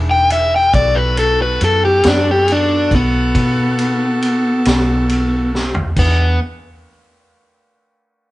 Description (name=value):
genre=slow blues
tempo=46 BPM (dotted quarters)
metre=12/8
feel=straight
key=E mixolydian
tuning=A4 = 440 Hz
part: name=warm saxophone section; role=sustained chords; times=0.0-6.4 s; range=B3 to A4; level=-25 LUFS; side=right 2 dB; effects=none
part: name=vintage muted fingered electric bass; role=bass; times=0.0-6.4 s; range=E1 to B2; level=-18 LUFS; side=equal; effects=none
part: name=overdriven electric guitar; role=melody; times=0.1-6.4 s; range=B3 to G5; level=-14 LUFS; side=left 1 dB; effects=none
part: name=vintage drum kit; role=drums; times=0.3-6.2 s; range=crash cymbal, kick drum, ride cymbal, snare drum, toms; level=-21 LUFS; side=equal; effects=none
room=light reverb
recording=band playing live in one room, nothing above 10.7 kHz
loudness=-12 LUFS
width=side -17 dB against mid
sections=0.0-6.0 A section; 6.0-8.3 B section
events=overdriven electric guitar solo 0.0-6.0; drum fill 5.5-6.0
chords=0.0 E7; 0.7 B5; 6.0 E7